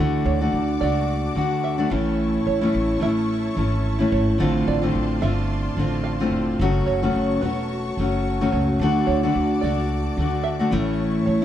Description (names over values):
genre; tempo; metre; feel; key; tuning
acoustic pop; 109 BPM; 4/4; swing 55% on 16ths; unclear; A4 = 440 Hz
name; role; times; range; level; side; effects
fingerpicked steel-string acoustic guitar; accompaniment; 0.0-11.4 s; F#2 to F#4; -21 LUFS; left 1 dB; none
warm symphonic string section; sustained chords; 0.0-11.4 s; E4 to D6; -33 LUFS; right 1 dB; none
upright bass; bass; 0.0-11.4 s; E1 to D2; -25 LUFS; right 1 dB; none
open-back banjo; arpeggios; 0.3-11.4 s; B4 to F5; -29 LUFS; right 10 dB; none
room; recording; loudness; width
small room reverb; dry, close 1970s-style studio recording; -19 LUFS; side -11 dB against mid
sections
0.0-11.4 A section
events
none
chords
0.0 D; 1.9 A; 4.4 F6; 6.6 F#m; 8.8 D; 10.7 A